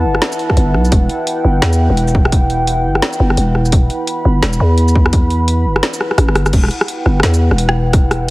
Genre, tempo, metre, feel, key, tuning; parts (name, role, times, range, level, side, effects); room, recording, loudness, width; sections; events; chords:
half-time drum and bass; 171 BPM; 4/4; swing 59% on 16ths, half-time; E minor; A4 = 436 Hz
dark analog pad; sustained chords; 0.0-8.3 s; E4 to B5; -19 LUFS; equal; chorus, vintage 12-bit sampler grit, sidechain pumping
growling 808-style bass; bass; 0.0-8.3 s; E1 to E2; -13 LUFS; equal
drum and bass drum kit; drums; 0.1-8.2 s; crash cymbal, hi-hat, rim click, shaker, snare drum; -18 LUFS; equal; overdrive
electronic kick drum; drums; 0.5-8.0 s; -12 LUFS; equal
light reverb, digital ambience; heavily compressed radio sound, multiband compression; -11 LUFS; side -20 dB against mid
0.0-6.5 A section; 6.5-8.3 A section
drop 0.0-6.5, 6.5-8.3; drum fill 6.0-6.5; kick drops out 6.2-6.5
0.0 Em